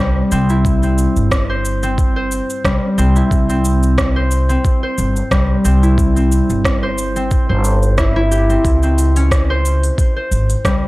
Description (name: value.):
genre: organic downtempo.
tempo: 90 BPM.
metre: 4/4.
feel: swing 54% on 16ths.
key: C major.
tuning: A4 = 440 Hz.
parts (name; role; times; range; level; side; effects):
concert harp; arpeggios; 0.0-10.9 s; G3 to C5; -18 LUFS; equal; analog delay.
upright bass; bass; 0.0-10.9 s; G1 to Db2; -16 LUFS; equal; sidechain pumping.
organic electronic drum kit; drums; 0.3-10.8 s; cabasa, hi-hat, rim click; -22 LUFS; equal; overdrive.
electronic kick drum; drums; 0.6-10.8 s; none; -16 LUFS; equal; none.
room: little or no reverb.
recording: dry, gritty hardware recording, cassette tape.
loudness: -12 LUFS.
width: side -19 dB against mid.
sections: 0.0-10.9 A section.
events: none.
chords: 0.0 C; 8.7 Db5.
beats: | 0.65 1.32 1.98 2.65 | 3.32 3.98 4.65 5.32 | 5.98 6.65 7.32 7.98 | 8.65 9.32 9.98 10.65.